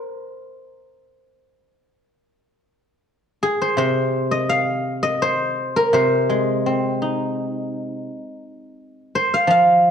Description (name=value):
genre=chinese traditional, Chinese solo plucked strings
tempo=75-86 BPM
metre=4/4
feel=rubato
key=C jue mode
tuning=A4 = 442 Hz
part: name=guzheng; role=solo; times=0.0-9.9 s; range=C3 to F5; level=-18 LUFS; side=equal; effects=none
room=wet recital hall reverb, RT60 1.5 s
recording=dark, warm production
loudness=-18 LUFS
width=side -7 dB against mid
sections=0.0-2.3 A section; 2.3-9.9 B section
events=none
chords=none